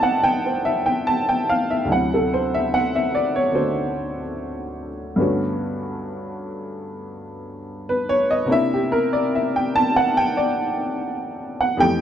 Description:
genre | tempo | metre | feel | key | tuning
solo jazz | 73 BPM | 4/4 | swing 68% on 8ths | unclear | A4 = 440 Hz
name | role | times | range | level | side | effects
warm upright piano | solo | 0.0-12.0 s | D2 to A5 | -19 LUFS | equal | none
room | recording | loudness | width
light reverb | dark, warm production | -19 LUFS | side -9 dB against mid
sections
0.0-12.0 A section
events
upright piano solo 0.0-12.0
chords
0.0 Am7; 1.9 D9; 5.2 Gmaj9#11; 8.5 C9

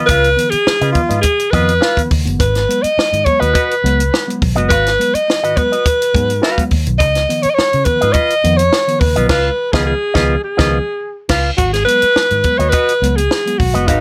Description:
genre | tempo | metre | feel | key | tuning
funk | 104 BPM | 4/4 | straight | unclear | A4 = 435 Hz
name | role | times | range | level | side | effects
electric guitar with an envelope filter | accompaniment | 0.0-14.0 s | E#4 to E#5 | -21 LUFS | equal | none
mellow tine electric piano | stabs | 0.0-14.0 s | G#2 to B3 | -24 LUFS | equal | none
breathy alto saxophone | melody | 0.1-14.0 s | D#4 to D#5 | -17 LUFS | equal | none
vintage muted fingered electric bass | bass | 0.1-14.0 s | F#1 to C#3 | -20 LUFS | equal | none
compact cocktail drum kit | drums | 0.1-14.0 s | crash cymbal, hi-hat, kick drum, snare drum | -20 LUFS | equal | none
room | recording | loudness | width
light reverb | none | -14 LUFS | mono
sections
0.0-11.6 A section; 11.6-14.0 B section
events
band accent 9.3-11.6; alto saxophone solo 11.6-14.0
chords
0.0 C#9

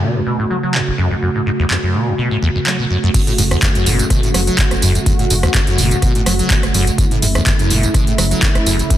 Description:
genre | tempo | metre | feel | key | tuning
acid house | 125 BPM | 4/4 | swing 54% on 16ths | F# minor | A4 = 436 Hz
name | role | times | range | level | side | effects
warm analog pad | sustained chords | 0.0-9.0 s | C#3 to F#4 | -20 LUFS | right 1 dB | chorus, sidechain pumping
acid bass, saw | riff | 0.0-9.0 s | F#1 to F#3 | -18 LUFS | equal | lush chorus, tape echo
electro analog drum machine | drums | 0.7-9.0 s | crash cymbal, handclaps, hi-hat, rim click, tambourine | -19 LUFS | right 1 dB | overdrive, low-pass filter on snare, low-pass filter on hats, low-pass filter on cymbals, low-pass filter on perc
electronic kick drum | drums | 3.1-9.0 s | none | -17 LUFS | equal | none
round analog bass | bass | 3.4-8.8 s | F#1 | -18 LUFS | equal | sidechain pumping
room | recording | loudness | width
light reverb, digital ambience | dense, heavily limited modern master | -13 LUFS | side -12 dB against mid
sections
0.0-3.1 A section; 3.1-9.0 B section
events
filter sweep on analog synth pad 0.0-3.1; drop 3.1-9.0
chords
0.0 F#m

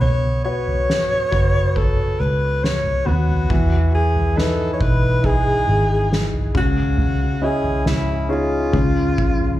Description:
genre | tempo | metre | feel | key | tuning
pop ballad | 69 BPM | 4/4 | straight | E major | A4 = 438 Hz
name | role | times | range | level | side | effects
warm alto saxophone | melody | 0.0-9.6 s | E4 to C#5 | -22 LUFS | equal | slapback echo, ping-pong delay
clear concert grand piano | accompaniment | 0.0-9.6 s | C#3 to D#5 | -24 LUFS | left 2 dB | plate reverb, slapback echo
vintage muted fingered electric bass | bass | 0.0-9.6 s | F#1 to E2 | -21 LUFS | equal | none
soft-mallet drum kit | drums | 0.0-9.6 s | kick drum, snare drum, toms | -22 LUFS | equal | none
room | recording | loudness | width
light reverb | live gig heard through the venue's PA, club reverb | -16 LUFS | side -14 dB against mid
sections
0.0-9.6 A section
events
none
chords
0.0 Bsus2; 3.5 Emaj7; 6.5 C#madd9; 8.7 C#

